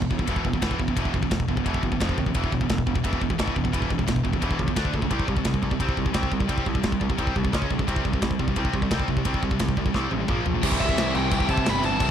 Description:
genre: heavy metal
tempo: 174 BPM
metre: 4/4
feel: straight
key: unclear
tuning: A4 = 440 Hz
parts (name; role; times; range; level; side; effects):
- scooped high-gain guitar; riff; 0.0-12.1 s; E2 to D4; -29 LUFS; left 12 dB; distortion
- tight distorted guitar; riff; 0.0-12.1 s; E2 to D4; -29 LUFS; right 11 dB; distortion
- overdriven picked electric bass; bass; 0.0-12.1 s; E1 to C3; -29 LUFS; equal; none
- tight metal drum kit; drums; 0.0-12.1 s; crash cymbal, kick drum, ride cymbal, snare drum, toms; -26 LUFS; equal; none
- thick fuzz guitar; riff; 10.6-12.1 s; C3 to C4; -28 LUFS; right 1 dB; distortion
- high-gain lead guitar; melody; 10.8-12.1 s; E5 to B5; -27 LUFS; left 1 dB; distortion
room: little or no reverb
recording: dark, warm production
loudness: -22 LUFS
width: side -9 dB against mid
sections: 0.0-10.6 A section; 10.6-12.1 B section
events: drum fill 9.9-10.6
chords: 0.0 E5; 2.0 F5; 2.3 E5; 4.8 D5; 5.1 C5; 7.5 C#5; 7.9 C5; 10.3 A#5; 10.6 C

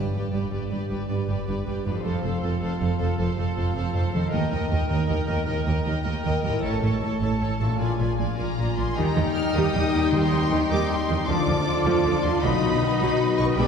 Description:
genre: cinematic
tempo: 104 BPM (dotted quarters)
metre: 12/8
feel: straight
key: Eb lydian from 9.0 s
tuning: A4 = 440 Hz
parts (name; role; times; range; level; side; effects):
- warm symphonic violin section; melody; 0.0-13.7 s; D5 to F6; -33 LUFS; left 3 dB; none
- rich chamber violin section; second line; 0.0-13.7 s; G4 to G5; -35 LUFS; left 3 dB; none
- warm symphonic viola section; accompaniment; 0.0-13.7 s; D3 to Bb4; -29 LUFS; right 2 dB; none
- concert harp; arpeggios; 0.0-13.7 s; F2 to F5; -31 LUFS; left 4 dB; none
- rich symphonic double bass section; bass; 0.0-13.7 s; F1 to Eb2; -28 LUFS; right 2 dB; none
- timpani; percussion; 0.0-0.3, 10.1-10.7 s; G2 to Eb3; -32 LUFS; right 1 dB; none
- warm symphonic cello section; bass; 0.1-13.7 s; Eb2 to Eb3; -29 LUFS; right 2 dB; none
- mellow clarinet; second line; 8.9-13.7 s; Eb4 to G4; -31 LUFS; left 1 dB; none
- mellow silver concert flute; second line; 9.0-13.7 s; G5 to B5; -34 LUFS; equal; none
- warm oboe; second line; 9.0-13.7 s; D5 to D#5; -32 LUFS; left 1 dB; none
- mellow French horn section; sustained chords; 9.0-13.7 s; F3 to D#4; -27 LUFS; left 6 dB; none
room: wet scoring stage reverb, RT60 2.0 s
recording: heard from further back in the room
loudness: -22 LUFS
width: side -6 dB against mid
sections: 0.0-9.0 A section; 9.0-13.7 B section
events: none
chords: 0.0 G; 2.0 F; 4.3 Eb; 6.6 A; 7.8 Bb7; 9.0 Eb; 10.1 Cm/Eb; 11.3 Dm; 12.4 B

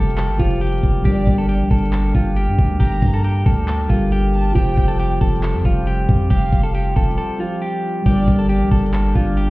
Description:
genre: hip hop, trap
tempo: 137 BPM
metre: 4/4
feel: half-time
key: G minor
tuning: A4 = 440 Hz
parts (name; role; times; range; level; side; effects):
- clean electric guitar; melody; 0.0-9.5 s; F4 to A4; -25 LUFS; left 1 dB; tape echo
- dark concert grand piano; accompaniment; 0.0-9.5 s; F3 to C5; -24 LUFS; right 1 dB; none
- hand-pumped harmonium; sustained chords; 0.0-9.5 s; D3 to G4; -26 LUFS; left 2 dB; none
- long sustained 808-style bass; bass; 0.0-9.5 s; F1 to G2; -19 LUFS; equal; none
- trap drum kit; drums; 0.0-9.5 s; handclaps, hi-hat, kick drum; -18 LUFS; equal; none
- warm studio violin section; second line; 1.1-8.5 s; D5 to Bb5; -33 LUFS; equal; tape echo
room: small room ambience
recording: heard muffled through a wall, stone room reverb, EQ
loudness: -15 LUFS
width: side -20 dB against mid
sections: 0.0-8.1 A section; 8.1-9.5 A section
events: break 7.2-8.1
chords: 0.0 Fsus2; 1.1 Gmadd9; 4.6 Fsus2; 8.1 Gmadd9

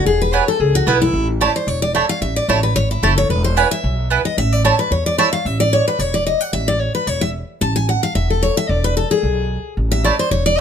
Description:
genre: bluegrass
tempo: 222 BPM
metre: 4/4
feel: swing 54% on 8ths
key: A major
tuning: A4 = 440 Hz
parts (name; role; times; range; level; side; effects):
- picked steel-string acoustic guitar; accompaniment; 0.0-10.6 s; E4 to A5; -18 LUFS; left 2 dB; none
- upright bass; bass; 0.0-10.6 s; E1 to E2; -19 LUFS; equal; none
- mandolin; stabs; 0.3-5.3, 10.0-10.1 s; A3 to A5; -17 LUFS; right 6 dB; none
room: light reverb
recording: close, detailed microphones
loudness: -15 LUFS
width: side -8 dB against mid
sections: 0.0-5.5 A section; 5.5-10.6 A section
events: steel-string acoustic guitar solo 0.0-10.6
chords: 0.1 E; 1.1 A; 3.3 E; 4.4 A; 5.5 A5; 8.7 E; 9.8 A

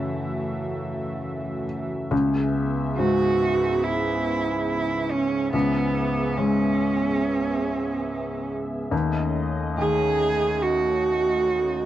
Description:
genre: neoclassical piano and strings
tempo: 71 BPM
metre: 4/4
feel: rubato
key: C# minor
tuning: A4 = 440 Hz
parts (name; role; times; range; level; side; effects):
- clear cello; second line; 0.0-11.9 s; E3 to G#4; -24 LUFS; right 3 dB; none
- felt-muted upright piano; accompaniment; 0.0-11.9 s; C#2 to A4; -26 LUFS; left 2 dB; none
- warm analog pad; sustained chords; 0.0-11.9 s; A3 to E5; -31 LUFS; right 1 dB; chorus
room: light reverb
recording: worn, warbling old tape, cassette tape, warbly pitch drift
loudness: -22 LUFS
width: side -12 dB against mid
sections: 0.0-2.1 A section; 2.1-11.9 A section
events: none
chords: 0.0 F#m7; 2.1 C#m7; 8.9 D#m7b5

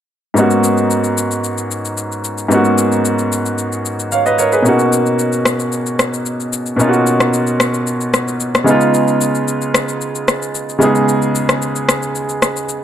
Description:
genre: amapiano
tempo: 112 BPM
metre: 4/4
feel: straight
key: G# dorian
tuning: A4 = 440 Hz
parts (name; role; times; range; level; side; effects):
- clear grand piano; accompaniment; 0.3-12.8 s; G#2 to E#5; -14 LUFS; equal; none
- electronic shaker and rim click; drums; 0.4-12.8 s; none; -18 LUFS; left 2 dB; none
room: moderate lush hall reverb, RT60 1.9 s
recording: none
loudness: -13 LUFS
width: side -10 dB against mid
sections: 0.4-12.8 A section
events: none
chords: 0.4 G#m11; 4.7 Bmaj9; 8.7 C#7

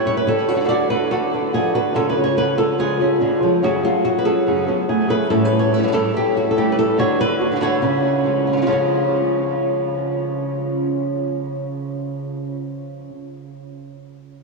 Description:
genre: flamenco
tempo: 143 BPM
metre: 4/4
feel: straight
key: C# phrygian dominant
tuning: A4 = 440 Hz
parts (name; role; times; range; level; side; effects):
- flamenco guitar; melody; 0.0-13.1 s; A2 to E#5; -19 LUFS; equal; diffuse ambient delay
- flamenco guitar; stabs; 0.1-13.1 s; F#2 to G#4; -22 LUFS; right 2 dB; diffuse ambient delay
room: wet huge ambient reverb, RT60 7.7 s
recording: dreamy mix soaked in reverb, cassette tape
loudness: -17 LUFS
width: side -1 dB against mid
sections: 0.0-8.7 A section; 8.7-12.0 B section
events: none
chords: 0.3 D; 2.0 C#; 3.6 F#madd9; 5.3 A7; 7.0 D; 7.8 C#

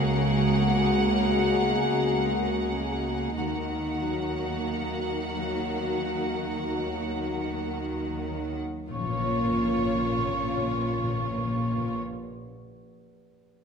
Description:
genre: cinematic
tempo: 40-55 BPM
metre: 4/4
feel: rubato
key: Bb minor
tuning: A4 = 440 Hz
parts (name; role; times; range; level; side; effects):
- rich studio violin section; melody; 0.0-12.0 s; Db5 to Gb5; -35 LUFS; left 1 dB; none
- dark clarinet; second line; 0.0-12.0 s; F4 to Gb4; -37 LUFS; left 1 dB; none
- mellow silver concert flute; second line; 0.0-12.0 s; Bb5 to Db6; -36 LUFS; right 1 dB; none
- warm studio violin section; second line; 0.0-12.0 s; F4 to Ab4; -38 LUFS; left 3 dB; none
- warm studio viola section; accompaniment; 0.0-12.0 s; Bb3; -34 LUFS; right 3 dB; none
- dark French horn section; sustained chords; 0.0-12.0 s; Ab3 to Gb4; -32 LUFS; left 4 dB; none
- concert harp; arpeggios; 0.0-12.8 s; Bb2 to Db5; -34 LUFS; left 3 dB; none
- rich chamber cello section; bass; 0.0-12.0 s; Bb2 to Eb3; -34 LUFS; right 1 dB; none
- rich studio double bass section; bass; 0.0-12.0 s; Bb1 to Eb2; -33 LUFS; right 3 dB; none
- timpani; percussion; 8.9-12.0 s; Bb2; -35 LUFS; left 4 dB; none
room: wet recital hall reverb, RT60 1.6 s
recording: minimal, uncompressed stereo recording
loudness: -25 LUFS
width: side -6 dB against mid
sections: 0.0-8.9 A section; 8.9-13.6 B section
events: slowing down 0.0-8.9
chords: 0.0 Gbadd9/Db; 3.4 Ebm; 8.9 Bbm

